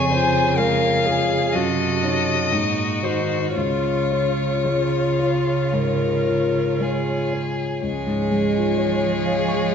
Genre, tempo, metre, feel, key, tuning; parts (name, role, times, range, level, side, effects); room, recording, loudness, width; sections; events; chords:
classical, slow romantic movement for piano quintet; 55-66 BPM; 4/4; rubato; Db major; A4 = 437 Hz
clear violin; melody; 0.0-9.7 s; C5 to Ab5; -24 LUFS; left 6 dB
clear violin; second line; 0.0-9.7 s; F4 to Bb4; -28 LUFS; left 2 dB
rich cello; second line; 0.0-9.7 s; Bb2 to F3; -26 LUFS; right 6 dB
dark grand piano; accompaniment; 0.0-9.7 s; Db2 to Db6; -24 LUFS; left 1 dB
rich viola; accompaniment; 0.0-9.7 s; Ab3 to C5; -26 LUFS; right 4 dB
wet scoring stage reverb, RT60 1.4 s; nothing above 7.5 kHz; -18 LUFS; side -7 dB against mid
0.0-7.8 A section; 7.8-9.7 B section
0.0 Db/F; 1.5 Ebm7b5/Gb; 2.5 Ab9; 3.6 Db